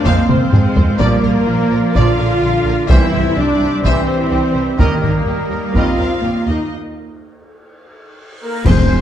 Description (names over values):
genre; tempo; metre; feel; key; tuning
cinematic, epic orchestral film score; 126 BPM; 4/4; straight; unclear; A4 = 439 Hz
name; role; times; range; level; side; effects
warm symphonic violin section; second line; 0.0-6.7 s; Bb4 to F5; -26 LUFS; equal; none
clear symphonic viola section; accompaniment; 0.0-8.9 s; Bb3 to C5; -24 LUFS; right 2 dB; none
mellow French horn section; sustained chords; 0.0-9.0 s; Bb3 to F4; -20 LUFS; left 1 dB; none
warm woodwind section; sustained chords; 0.0-9.0 s; F3 to F5; -27 LUFS; left 1 dB; none
rich symphonic cello section; bass; 0.0-8.7 s; F2 to C4; -20 LUFS; right 2 dB; none
warm symphonic violin section; melody; 0.1-9.0 s; F4 to Ab5; -26 LUFS; left 3 dB; none
bright trombone section; sustained chords; 0.1-9.0 s; Eb3 to Bb3; -29 LUFS; right 3 dB; none
clear trumpet; stabs; 0.1-9.0 s; Bb4 to D5; -28 LUFS; right 2 dB; none
rich symphonic double bass section; bass; 0.1-8.7 s; F1 to F2; -20 LUFS; right 2 dB; none
taiko ensemble; drums; 0.1-9.0 s; none; -17 LUFS; equal; none
timpani; percussion; 2.9-3.6, 8.6-9.0 s; F2 to C3; -18 LUFS; left 1 dB; none
cymbal swell, clash cymbals and concert bass drum; percussion; 4.8-9.0 s; none; -25 LUFS; equal; none
reverse cymbal and impact; sound effects; 8.3-9.0 s; none; -27 LUFS; equal; none
small flute group; second line; 8.4-9.0 s; Bb4 to C5; -23 LUFS; equal; none
room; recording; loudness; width
wet scoring stage reverb, RT60 1.8 s; dark, warm production; -12 LUFS; side -10 dB against mid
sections
0.0-8.7 A section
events
drum fill 0.3-1.0, 7.9-8.7; break 6.7-8.7; reverse cymbal 8.3-8.7; band accent 8.7-9.0; impact 8.7-9.0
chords
0.0 Fm; 1.0 Bb; 2.9 C; 4.8 Eb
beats
0.05 0.52 | 1.00 1.47 1.95 2.42 | 2.89 3.37 3.84 4.32 | 4.79 5.27 5.75 6.23 | 6.72 7.20 7.69 8.18 | 8.66